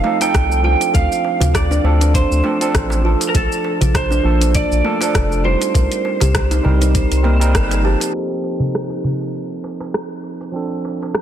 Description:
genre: organic downtempo.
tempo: 100 BPM.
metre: 4/4.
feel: swing 55% on 16ths.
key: unclear.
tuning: A4 = 442 Hz.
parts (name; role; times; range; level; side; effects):
electric slide guitar; melody; 0.0-7.8 s; A4 to G5; -21 LUFS; right 3 dB; ping-pong delay.
overdriven tine electric piano; accompaniment; 0.0-11.2 s; F3 to A5; -23 LUFS; right 4 dB; sidechain pumping, digital delay.
kalimba; arpeggios; 0.0-8.0 s; A3 to Bb4; -23 LUFS; equal; digital delay.
darbuka; percussion; 0.0-11.1 s; none; -25 LUFS; equal; none.
deep house drum kit; drums; 0.2-11.2 s; cabasa, hi-hat, rim click; -24 LUFS; equal; overdrive.
round analog bass; bass; 0.3-8.0 s; F1 to D2; -16 LUFS; equal; sidechain pumping.
electronic kick drum; drums; 0.3-7.7 s; none; -18 LUFS; equal; none.
room: light reverb, digital ambience.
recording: dense, heavily limited modern master, low-pass filter.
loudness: -14 LUFS.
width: side -10 dB against mid.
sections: 0.0-8.1 A section; 8.1-11.2 B section.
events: band accent 7.5; filter sweep 8.1-11.2.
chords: 0.0 F7; 0.9 Dm7; 3.3 Bbmaj7; 5.7 Cm7; 8.1 F7; 10.5 Dm7.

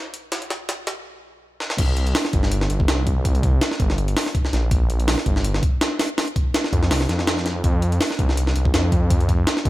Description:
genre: drum and bass, jungle.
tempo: 164 BPM.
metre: 4/4.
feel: swing 54% on 16ths.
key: unclear.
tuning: A4 = 440 Hz.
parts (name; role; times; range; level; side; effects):
breakbeat sampler-style drum kit; drums; 0.1-9.7 s; crash cymbal, hi-hat, kick drum, snare drum; -20 LUFS; equal; high-pass filter on hats, studio reverb, high-pass filter on snare, high-pass filter on kick, high-pass filter on cymbals.
detuned saw bass; bass; 1.8-9.7 s; G1 to F2; -21 LUFS; equal; none.
room: little or no reverb.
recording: faint mains hum.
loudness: -18 LUFS.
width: side -17 dB against mid.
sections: 0.0-1.8 A section; 1.8-9.7 B section.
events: build-up 0.0-1.8; drum fill 0.0-1.1, 1.6; stop 1.1-1.8; drop 1.8-9.7.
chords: none.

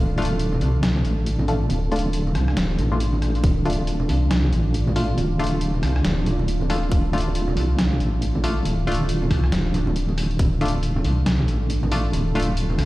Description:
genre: deep dubstep.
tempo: 138 BPM.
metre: 4/4.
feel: swing 60% on 16ths, half-time.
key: D minor.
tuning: A4 = 441 Hz.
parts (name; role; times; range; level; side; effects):
deep dark ambient pad; sustained chords; 0.0-12.9 s; D4 to A4; -31 LUFS; right 2 dB; chorus, built-in reverb.
filtered dub chord stab; stabs; 0.0-12.5 s; A3 to F4; -29 LUFS; left 2 dB; chorus, dub echo.
deep soft wobble bass; bass; 0.0-12.9 s; D1 to C2; -21 LUFS; equal; chorus, tube saturation.
trip hop sampler-style drum kit; drums; 0.2-12.9 s; hi-hat, rim click, snare drum; -29 LUFS; equal; none.
congas; percussion; 0.3-12.9 s; none; -29 LUFS; right 1 dB; dub echo.
electronic kick drum; drums; 3.4-3.5, 6.9-10.5 s; none; -21 LUFS; equal; none.
room: digital ambience.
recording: played on a big sound system in a bare room, large studio reverb.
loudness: -19 LUFS.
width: side -18 dB against mid.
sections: 0.0-12.9 A section.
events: none.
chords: 0.0 Dm.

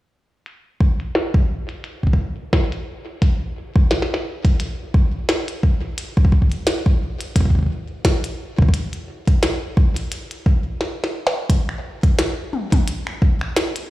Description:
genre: IDM.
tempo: 87 BPM.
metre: 4/4.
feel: swing 56% on 16ths.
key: none.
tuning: none.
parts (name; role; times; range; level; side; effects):
glitchy drum kit; drums; 0.5-13.9 s; finger snaps, hi-hat, snare drum, toms; -24 LUFS; equal; low-pass filter on hats, low-pass filter on snare, low-pass filter on toms, tape echo.
electronic kick drum; drums; 0.8-13.4 s; none; -15 LUFS; equal; none.
room: digital ambience.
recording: played on a big sound system in a bare room, large studio reverb.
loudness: -17 LUFS.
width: side -16 dB against mid.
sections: 0.5-11.5 A section; 11.5-13.9 B section.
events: drum fill 10.8-11.5.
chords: none.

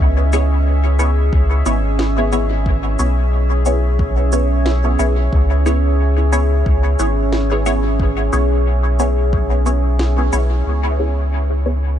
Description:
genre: ambient dub.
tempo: 90 BPM.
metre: 4/4.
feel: swing 56% on 16ths.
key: C# minor.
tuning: A4 = 440 Hz.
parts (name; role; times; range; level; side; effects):
deep dark ambient pad; sustained chords; 0.0-12.0 s; C#4 to E5; -22 LUFS; equal; chorus, built-in reverb.
soft dub sub bass; bass; 0.0-12.0 s; G#1 to C#2; -16 LUFS; equal; tube saturation.
filtered dub chord stab; stabs; 0.3-11.8 s; B3 to C#5; -22 LUFS; left 1 dB; phaser, ensemble chorus, dub echo.
electronic cabasa and snare drum; drums; 0.3-10.5 s; none; -30 LUFS; right 1 dB; dub echo.
electronic kick drum; drums; 1.3-9.5 s; none; -18 LUFS; equal; none.
room: little or no reverb.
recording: none.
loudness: -14 LUFS.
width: side -10 dB against mid.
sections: 0.0-10.7 A section; 10.7-12.0 B section.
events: band accent 10.0-10.3.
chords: 0.0 C#m7.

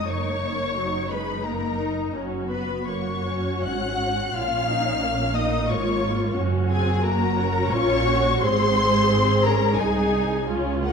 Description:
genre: classical, slow romantic movement for string orchestra.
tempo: 75-91 BPM.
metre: 3/4.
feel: rubato.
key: unclear.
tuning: A4 = 440 Hz.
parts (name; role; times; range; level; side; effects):
rich studio violin section; melody; 0.0-10.9 s; Gb5 to Gb6; -27 LUFS; left 4 dB; none.
rich studio violin section; second line; 0.0-10.9 s; Gb4 to Gb5; -27 LUFS; left 2 dB; none.
warm studio viola section; accompaniment; 0.0-10.9 s; Gb3 to Ab4; -26 LUFS; equal; none.
rich studio double bass section; bass; 0.0-10.9 s; Gb1 to Db2; -28 LUFS; right 2 dB; none.
warm studio cello section; bass; 0.0-10.9 s; C2 to Bb2; -28 LUFS; right 3 dB; none.
room: wet scoring stage reverb, RT60 1.9 s.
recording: dark, warm production.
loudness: -20 LUFS.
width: side -6 dB against mid.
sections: 0.0-10.9 A section.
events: none.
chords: 0.1 Ebm/Gb; 2.2 Gb; 4.3 Db69; 6.4 Gbmaj7; 8.4 Ab.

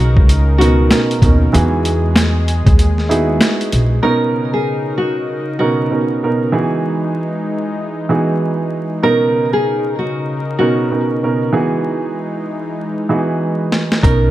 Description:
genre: hip hop, boom-bap hip-hop.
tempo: 96 BPM.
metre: 4/4.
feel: swing 62% on 16ths.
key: B major.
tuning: A4 = 439 Hz.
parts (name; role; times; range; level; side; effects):
nylon-string guitar; melody; 0.0-14.3 s; F#4 to A#4; -19 LUFS; left 1 dB; high-pass filter, low-pass filter, tape echo.
dark concert grand piano; accompaniment; 0.0-14.3 s; B2 to A#4; -17 LUFS; right 2 dB; high-pass filter, low-pass filter.
warm analog pad; sustained chords; 0.0-14.3 s; C#3 to A#4; -23 LUFS; left 1 dB; chorus, high-pass filter, low-pass filter.
upright bass; bass; 0.0-4.0, 14.0-14.3 s; A#1 to E2; -14 LUFS; equal; none.
boom bap sampler-style drum kit; drums; 0.2-3.9, 13.7-14.2 s; hi-hat, kick drum, snare drum; -14 LUFS; equal; none.
room: light reverb, studio reverb.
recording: vinyl crackle.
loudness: -13 LUFS.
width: side -14 dB against mid.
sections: 0.0-4.0 A section; 4.0-14.3 A section.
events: kick muted 2.8-4.0; drum fill 13.4-14.0.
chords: 0.0 Bmaj9; 1.5 Emaj7; 4.0 Bmaj9; 6.5 Emaj7; 9.0 Bmaj9; 11.5 Emaj7.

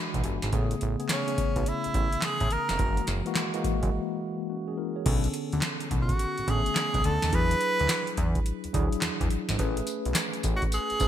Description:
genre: R&B, new jack swing.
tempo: 106 BPM.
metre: 4/4.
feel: swing 65% on 16ths.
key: B dorian.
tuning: A4 = 442 Hz.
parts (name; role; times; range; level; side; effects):
tine electric piano; accompaniment; 0.0-11.1 s; C#3 to B5; -32 LUFS; left 1 dB; medium stereo tremolo.
fat analog bass; bass; 0.1-11.1 s; E#1 to A2; -29 LUFS; equal; none.
booming analog drum machine; drums; 0.1-11.1 s; crash cymbal, handclaps, hi-hat, kick drum, snare drum, tambourine; -28 LUFS; equal; gated reverb.
clear tenor saxophone; melody; 1.1-11.1 s; C#4 to B4; -29 LUFS; right 1 dB; ping-pong delay.
room: light reverb.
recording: bright 1980s-style digital production.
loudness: -25 LUFS.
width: side -10 dB against mid.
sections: 0.0-5.1 A section; 5.1-11.1 B section.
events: tine electric piano fill 0.0-0.5; break 3.9-5.1.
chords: 0.0 E9; 0.5 Amaj9; 2.8 F#9; 5.1 Bm9; 7.3 E9; 9.6 Amaj9.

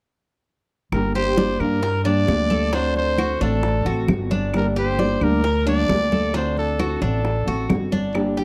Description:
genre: latin, Cuban son and guajira.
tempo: 133 BPM.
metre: 4/4.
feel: straight.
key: G harmonic minor.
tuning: A4 = 440 Hz.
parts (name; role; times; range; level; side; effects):
growling trumpet; melody; 0.9-7.7 s; A4 to D5; -27 LUFS; equal; slapback echo.
nylon-string guitar; accompaniment; 0.9-8.4 s; D3 to G4; -27 LUFS; equal; none.
upright bass; bass; 0.9-8.4 s; G1 to G2; -26 LUFS; equal; none.
bongos; percussion; 0.9-8.4 s; none; -33 LUFS; equal; none.
claves; percussion; 0.9-8.4 s; none; -36 LUFS; equal; none.
congas; percussion; 0.9-8.4 s; none; -28 LUFS; equal; none.
Cuban tres; arpeggios; 1.2-8.4 s; D4 to D5; -29 LUFS; equal; none.
room: little or no reverb.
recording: dry, close 1970s-style studio recording.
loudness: -21 LUFS.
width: mono.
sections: 0.9-8.4 A section.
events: none.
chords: 0.9 Gm; 2.7 D7; 4.5 Gm; 6.3 D7.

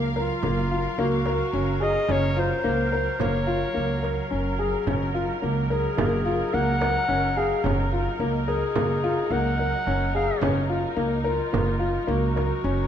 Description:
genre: contemporary instrumental, chamber music in an uneven meter.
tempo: 108 BPM.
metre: 5/4.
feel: straight.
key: Gb major.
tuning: A4 = 439 Hz.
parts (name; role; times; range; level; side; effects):
muted studio string section; sustained chords; 0.0-12.9 s; Gb3 to F5; -32 LUFS; equal; none.
dark baby grand piano; arpeggios; 0.0-12.8 s; Bb3 to Bb4; -26 LUFS; left 3 dB; none.
upright bass; bass; 0.0-12.9 s; Gb1 to Db2; -27 LUFS; right 2 dB; none.
frame drum; percussion; 0.1-12.6 s; none; -32 LUFS; right 5 dB; none.
mellow clarinet; melody; 0.2-12.9 s; F4 to Gb5; -28 LUFS; left 1 dB; none.
room: wet recital hall reverb, RT60 1.9 s.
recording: dark, warm production.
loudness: -22 LUFS.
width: side -9 dB against mid.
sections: 0.0-12.9 A section.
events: none.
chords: 0.0 Gbmaj7.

